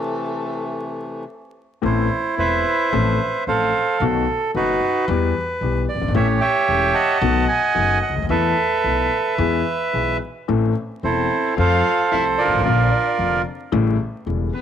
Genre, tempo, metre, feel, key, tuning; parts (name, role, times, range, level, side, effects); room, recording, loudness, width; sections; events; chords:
tango; 111 BPM; 4/4; rubato; A minor; A4 = 444 Hz
bandoneon; melody; 0.0-14.6 s; C3 to A5; -19 LUFS; right 3 dB
dark violin; second line; 0.0-1.2, 11.0-14.6 s; B3 to A4; -30 LUFS; left 8 dB
warm concert grand piano; accompaniment; 1.8-14.5 s; E1 to A4; -24 LUFS; left 7 dB
upright bass; bass; 1.8-14.5 s; E1 to F2; -23 LUFS; equal
moderate spring reverb, RT60 1.7 s, small room ambience; 1960s-style stereo, vinyl crackle; -17 LUFS; side -9 dB against mid
0.0-1.8 A section; 1.8-14.6 B section
stop 0.0-1.8
0.0 Am; 1.8 Amadd9; 2.9 F/A; 4.0 B7; 5.1 Em; 6.2 A7; 7.2 B7; 8.3 Esus4; 9.4 E; 10.5 Am; 11.6 F; 12.7 Bb; 13.7 A7